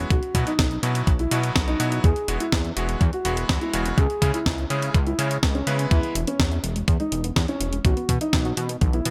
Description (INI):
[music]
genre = italo disco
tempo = 124 BPM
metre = 4/4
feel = straight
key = E major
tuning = A4 = 439 Hz
[part]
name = bright electric grand piano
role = stabs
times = 0.0-6.1 s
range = B2 to B4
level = -31 LUFS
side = equal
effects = delay
[part]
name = chorused synth bass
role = bass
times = 0.0-9.1 s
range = E1 to C#3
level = -28 LUFS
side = equal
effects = tube saturation
[part]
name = dark baby grand piano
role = melody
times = 0.1-9.1 s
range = C#4 to G#4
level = -31 LUFS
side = equal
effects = delay
[part]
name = clean 12-bit digital drum machine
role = drums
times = 0.1-9.1 s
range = hi-hat, snare drum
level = -30 LUFS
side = equal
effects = gated reverb
[part]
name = electronic kick drum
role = drums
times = 0.1-8.9 s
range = none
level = -24 LUFS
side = equal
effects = none
[part]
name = soft round pluck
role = arpeggios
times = 5.9-9.1 s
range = E3 to F#4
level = -34 LUFS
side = equal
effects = chorus, delay
[sound]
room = little or no reverb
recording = none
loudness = -23 LUFS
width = mono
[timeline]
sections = 0.0-9.1 A section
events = none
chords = 0.1 Bsus4; 2.0 Eadd9; 4.0 C#m; 5.9 E; 7.8 Bsus4